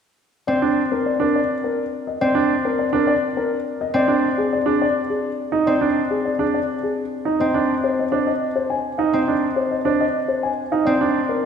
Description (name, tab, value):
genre	classical, minimalist pattern music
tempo	104 BPM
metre	3/4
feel	straight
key	unclear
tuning	A4 = 440 Hz
part	dark baby grand piano	melody	0.5-11.5 s	Ab4 to Ab5	-23 LUFS	left 3 dB	none
part	concert harp	accompaniment	0.5-11.5 s	C4	-23 LUFS	left 2 dB	none
part	clear grand piano	arpeggios	0.6-11.2 s	D4 to Eb4	-22 LUFS	right 5 dB	none
room	wet scoring stage reverb, RT60 2.2 s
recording	heard from further back in the room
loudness	-18 LUFS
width	side -7 dB against mid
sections	0.5-11.5 A section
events	none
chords	0.5 N.C.; 3.9 Ab; 10.9 C7(no3)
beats	| 0.48 1.05 1.63 | 2.21 2.79 3.36 | 3.94 4.52 5.09 | 5.67 6.25 6.82 | 7.40 7.98 8.55 | 9.13 9.71 10.29 | 10.86 11.44